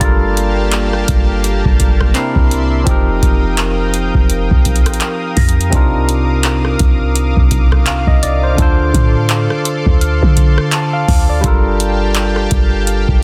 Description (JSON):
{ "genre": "contemporary R&B", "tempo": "84 BPM", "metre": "4/4", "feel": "swing 58% on 16ths", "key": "C dorian", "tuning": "A4 = 440 Hz", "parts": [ { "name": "barky tine electric piano", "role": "accompaniment", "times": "0.0-13.2 s", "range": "C3 to A5", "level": "-20 LUFS", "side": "equal", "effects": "none" }, { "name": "lush unison pad", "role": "sustained chords", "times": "0.0-13.2 s", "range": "Bb3 to Eb6", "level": "-25 LUFS", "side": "equal", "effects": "chorus, sidechain pumping" }, { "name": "clean 808-style bass", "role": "bass", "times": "0.0-13.2 s", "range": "F1 to D3", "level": "-18 LUFS", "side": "equal", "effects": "none" }, { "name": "booming analog drum machine", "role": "drums", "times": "0.0-13.2 s", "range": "handclaps, hi-hat, kick drum, rim click", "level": "-16 LUFS", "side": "equal", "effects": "none" }, { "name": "worn celesta", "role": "texture", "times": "0.0-13.2 s", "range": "F6 to C7", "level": "-31 LUFS", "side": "equal", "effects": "tape echo" } ], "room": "little or no reverb", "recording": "dense, heavily limited modern master", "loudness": "-13 LUFS", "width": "mono", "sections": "0.0-13.2 A section", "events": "none", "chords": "0.0 Gm9; 2.2 C9; 2.9 F9sus4; 5.7 Cm11; 8.6 Dm7; 11.4 Gm9" }